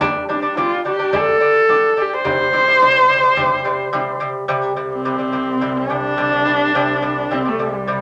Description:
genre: mongolian traditional, Mongolian folk.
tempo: 107 BPM.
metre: 4/4.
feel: straight.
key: C zhi mode.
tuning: A4 = 441 Hz.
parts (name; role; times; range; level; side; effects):
lute; arpeggios; 0.0-8.0 s; C3 to D4; -23 LUFS; equal; none.
frame drum; percussion; 0.0-4.1 s; none; -31 LUFS; equal; none.
warm horsehead fiddle; melody; 0.3-8.0 s; G3 to C5; -18 LUFS; equal; none.
muted cello; drone; 4.5-8.0 s; C2; -33 LUFS; equal; none.
room: wet club ambience, RT60 0.5 s.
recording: none.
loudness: -17 LUFS.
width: mono.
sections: 0.0-4.5 A section; 4.5-8.0 B section.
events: none.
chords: 0.0 G5; 2.3 C5.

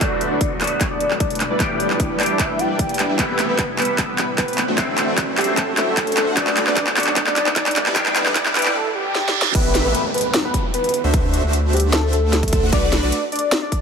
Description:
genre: future bass.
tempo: 151 BPM.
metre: 4/4.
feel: half-time.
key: E minor.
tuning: A4 = 440 Hz.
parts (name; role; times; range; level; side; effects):
warm velvety synth lead; melody; 0.0-13.8 s; G4 to G5; -24 LUFS; equal; chorus, tremolo, sidechain pumping, digital delay.
clean electric guitar; accompaniment; 0.0-8.8 s; C3 to G4; -27 LUFS; left 2 dB; ensemble chorus, sidechain pumping, digital delay.
shimmering ambient pad; sustained chords; 0.0-8.7 s; D2 to G5; -31 LUFS; equal; chorus, built-in reverb, sidechain pumping.
supersaw chords; riff; 0.0-13.1 s; G3 to F#5; -24 LUFS; equal; lush chorus, sidechain pumping, low-pass filter.
electronic kick drum; drums; 0.0-13.8 s; none; -23 LUFS; equal; overdrive, studio reverb.
trap drum kit; drums; 0.0-13.8 s; crash cymbal, handclaps, hi-hat, snare drum; -21 LUFS; equal; overdrive, studio reverb.
riser, reverse cymbal and downlifter; sound effects; 0.7-12.7 s; none; -28 LUFS; right 3 dB; none.
saturated sub bass; bass; 9.5-13.1 s; A1 to D2; -20 LUFS; equal; sidechain pumping.
room: light reverb.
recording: high-pass filter.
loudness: -16 LUFS.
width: side -6 dB against mid.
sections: 0.0-9.5 A section; 9.5-13.8 B section.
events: build-up 0.0-9.5; drum fill 0.0-8.8, 9.2-9.5; filter sweep on supersaw synth 0.0-9.5; filter sweep 0.0-9.5; riser 0.7-8.8; break 8.8-9.5; reverse cymbal 8.8-9.5; drop 9.5-13.8.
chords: 0.0 Bm7; 1.6 Em7; 3.2 Am9; 4.8 D9; 6.4 Bm7; 8.0 Em7; 9.5 Am9; 11.1 D9; 12.7 Bm7.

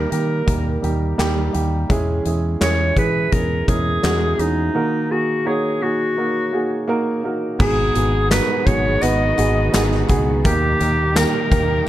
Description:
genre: piano-driven pop.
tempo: 84 BPM.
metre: 4/4.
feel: straight.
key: G# minor.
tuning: A4 = 440 Hz.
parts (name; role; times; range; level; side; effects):
clear clarinet; melody; 0.0-11.9 s; D#4 to D#5; -22 LUFS; equal; none.
warm baby grand piano; accompaniment; 0.0-11.9 s; G#2 to C#5; -21 LUFS; right 2 dB; none.
fingered electric bass; bass; 0.0-11.8 s; G#1 to E3; -21 LUFS; equal; none.
huge arena drum kit; drums; 0.1-11.7 s; crash cymbal, handclaps, hi-hat, kick drum, snare drum; -22 LUFS; equal; none.
warm studio string section; sustained chords; 7.6-11.9 s; A#2 to G4; -28 LUFS; left 1 dB; none.
tambourine; percussion; 7.6-11.7 s; none; -37 LUFS; left 5 dB; none.
room: light reverb.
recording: dark, warm production.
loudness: -16 LUFS.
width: side -13 dB against mid.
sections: 0.0-7.6 A section; 7.6-11.9 B section.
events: none.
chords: 0.0 D#; 1.9 C#m/E; 4.8 D#m; 7.6 G#m7; 10.4 D#.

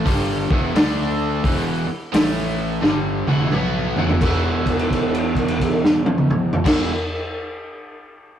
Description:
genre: blues rock power trio and southern rock.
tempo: 87 BPM.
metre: 4/4.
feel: swing 64% on 8ths.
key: E minor.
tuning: A4 = 440 Hz.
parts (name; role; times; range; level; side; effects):
overdriven electric guitar; riff; 0.0-6.9 s; E2 to D4; -22 LUFS; right 2 dB; spring reverb.
fuzz fingered electric bass; bass; 0.1-6.9 s; E1 to D2; -27 LUFS; equal; overdrive.
vintage drum kit; drums; 0.1-6.8 s; crash cymbal, hi-hat, kick drum, snare drum, toms; -20 LUFS; equal; none.
room: light reverb.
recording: rough rehearsal-room recording, warm saturation.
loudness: -17 LUFS.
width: side -10 dB against mid.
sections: 0.0-4.2 A section; 4.2-7.0 B section.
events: drum fill 2.8-4.2; held note 4.2-6.6.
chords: 0.1 Em; 0.7 D5; 1.4 E5; 2.1 A5; 2.8 Em; 4.2 E5.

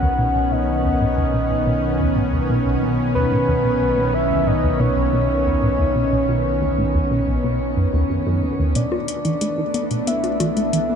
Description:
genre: ambient, sequencer-driven space music.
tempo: 91 BPM.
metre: 4/4.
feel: straight.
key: unclear.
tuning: A4 = 440 Hz.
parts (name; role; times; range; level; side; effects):
soft octave-layered synth lead; melody; 0.0-11.0 s; B4 to F#5; -23 LUFS; left 1 dB; chorus, shimmer reverb, analog delay.
lush unison pad; sustained chords; 0.0-11.0 s; D#3 to D4; -22 LUFS; equal; chorus, shimmer reverb.
plucky analog bass; riff; 0.0-11.0 s; B1 to B3; -22 LUFS; equal; lush chorus, analog delay.
analog drone; bass; 0.0-11.0 s; B1; -25 LUFS; equal; chorus.
electronic hi-hat and bongos; percussion; 8.8-10.9 s; none; -28 LUFS; left 5 dB; none.
room: wet huge ambient reverb, RT60 7.5 s.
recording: none.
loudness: -17 LUFS.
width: side -7 dB against mid.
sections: 0.0-8.8 A section; 8.8-11.0 B section.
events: filter sweep on analog synth bass 0.0-8.8.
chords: 0.0 Badd9; 8.8 Bm7.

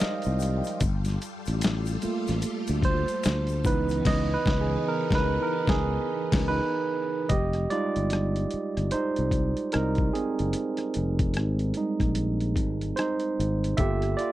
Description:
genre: R&B, neo-soul.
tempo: 74 BPM.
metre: 4/4.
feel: swing 60% on 16ths.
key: unclear.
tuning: A4 = 440 Hz.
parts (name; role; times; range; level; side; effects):
barky tine electric piano; accompaniment; 0.0-14.3 s; Fb3 to F5; -27 LUFS; right 3 dB; none.
phased string machine; sustained chords; 0.0-7.3 s; Db3 to A4; -35 LUFS; left 3 dB; ensemble chorus, phaser.
fingered electric bass; bass; 0.0-14.1 s; F1 to D2; -27 LUFS; left 1 dB; none.
boom bap sampler-style drum kit; drums; 0.0-14.3 s; crash cymbal, hi-hat, kick drum, rim click, snare drum; -28 LUFS; left 1 dB; overdrive.
egg shaker and finger snaps; percussion; 0.2-4.0 s; none; -42 LUFS; left 12 dB; none.
room: little or no reverb.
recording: dry, close 1970s-style studio recording.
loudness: -24 LUFS.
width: side -15 dB against mid.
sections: 0.0-7.3 A section; 7.3-14.3 B section.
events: tine electric piano solo 0.0-7.3, 7.3-14.3; band accent 4.1-7.3.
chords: 0.0 Fm9; 0.8 Gm9; 3.6 Dbm9; 7.3 Fm9; 13.8 Gm9.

